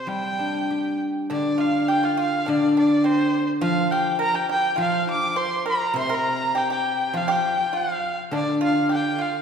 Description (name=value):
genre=chinese traditional, Chinese chamber ensemble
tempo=102 BPM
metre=2/4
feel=rubato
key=G yu mode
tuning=A4 = 439 Hz
part: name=clear erhu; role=melody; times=0.0-9.4 s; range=C5 to D6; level=-25 LUFS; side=equal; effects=none
part: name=guzheng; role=accompaniment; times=0.0-9.4 s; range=C3 to G4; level=-23 LUFS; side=left 1 dB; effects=none
part: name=pipa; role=second line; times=1.3-9.4 s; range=C4 to C5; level=-26 LUFS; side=right 2 dB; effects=none
room=wet concert hall reverb, RT60 1.8 s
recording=heard from further back in the room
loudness=-20 LUFS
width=side -7 dB against mid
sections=0.0-1.3 A section; 1.3-9.4 B section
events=none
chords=none